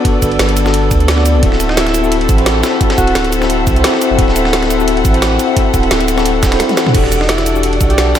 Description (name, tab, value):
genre	liquid drum and bass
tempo	174 BPM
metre	4/4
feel	swing 54% on 16ths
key	unclear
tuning	A4 = 440 Hz
part	bell-like tine electric piano	accompaniment	0.0-8.2 s	B3 to D5	-15 LUFS	left 2 dB	auto-pan, tape echo
part	warm studio string section	sustained chords	0.0-8.2 s	A4 to F#5	-19 LUFS	left 2 dB	none
part	dusty soul sampler-style drum kit	drums	0.0-8.2 s	ride cymbal, snare drum	-22 LUFS	right 1 dB	high-pass filter on cymbals, high-pass filter on snare
part	drum and bass drum kit	drums	0.1-8.2 s	crash cymbal, hi-hat, shaker, snare drum, toms	-19 LUFS	equal	none
part	electronic kick drum	drums	0.1-7.9 s	none	-14 LUFS	equal	none
part	warm sub bass	bass	0.2-8.1 s	D1 to D2	-16 LUFS	equal	none
part	mellow alto saxophone	melody	1.7-3.3, 7.2-8.2 s	E4 to G4	-20 LUFS	equal	diffuse ambient delay
room	moderate lush hall reverb, RT60 1.9 s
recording	dreamy mix soaked in reverb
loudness	-10 LUFS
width	side -10 dB against mid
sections	0.0-8.2 A section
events	kick drops out 6.6-6.9; drum fill 6.6-6.9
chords	0.0 Gmaj7; 1.4 D9; 6.9 Em11